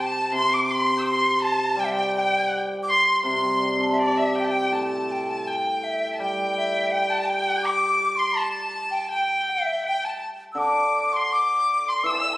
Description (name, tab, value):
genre	chinese traditional, Chinese chamber ensemble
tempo	82 BPM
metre	2/4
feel	straight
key	C gong mode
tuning	A4 = 439 Hz
part	bright large dizi	melody	0.0-12.4 s	A4 to E6	-24 LUFS	equal	none
part	clear erhu	second line	0.0-12.4 s	D5 to G6	-25 LUFS	left 1 dB	none
part	hammered dulcimer	accompaniment	0.0-8.4, 10.5-12.4 s	A2 to G4	-26 LUFS	equal	none
room	wet recital hall reverb, RT60 1.7 s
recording	recorded on a phone in the room, club reverb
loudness	-20 LUFS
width	side -18 dB against mid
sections	0.0-4.7 A section; 4.7-12.4 B section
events	none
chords	none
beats	| 0.34 1.07 | 1.79 2.52 | 3.25 3.98 | 4.72 5.47 | 6.20 6.92 | 7.64 8.37 | 9.10 9.84 | 10.58 11.32 | 12.05